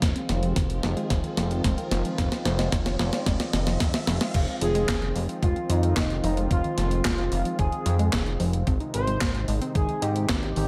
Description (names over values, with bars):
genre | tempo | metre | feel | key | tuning
synthwave | 111 BPM | 4/4 | straight | F minor | A4 = 440 Hz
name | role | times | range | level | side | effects
warm analog pad | sustained chords | 0.0-10.7 s | C3 to F4 | -35 LUFS | equal | chorus, sidechain pumping
warbly dusty pluck | arpeggios | 0.0-10.6 s | Eb3 to Eb4 | -36 LUFS | equal | chorus, digital delay
chorused synth bass | bass | 0.0-10.7 s | F1 to Ab2 | -29 LUFS | equal | sidechain pumping
electronic kick drum | drums | 0.0-10.4 s | none | -29 LUFS | equal | studio reverb
gated 80s digital drum machine | drums | 0.0-10.7 s | crash cymbal, handclaps, hi-hat, snare drum | -32 LUFS | equal | gated reverb, gated reverb snare, studio reverb
riser | sound effects | 0.0-4.3 s | none | -40 LUFS | equal | none
expressive synth lead | melody | 4.6-10.7 s | Eb4 to C5 | -32 LUFS | equal | lush chorus, vintage 12-bit sampler grit, digital delay
room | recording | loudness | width
light reverb | none | -25 LUFS | mono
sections
0.0-4.3 A section; 4.3-10.7 B section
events
drum fill 0.0-4.3; riser 0.0-4.3; filter sweep on synth arpeggio sound 0.0-4.3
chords
0.0 Fm7; 8.7 Ab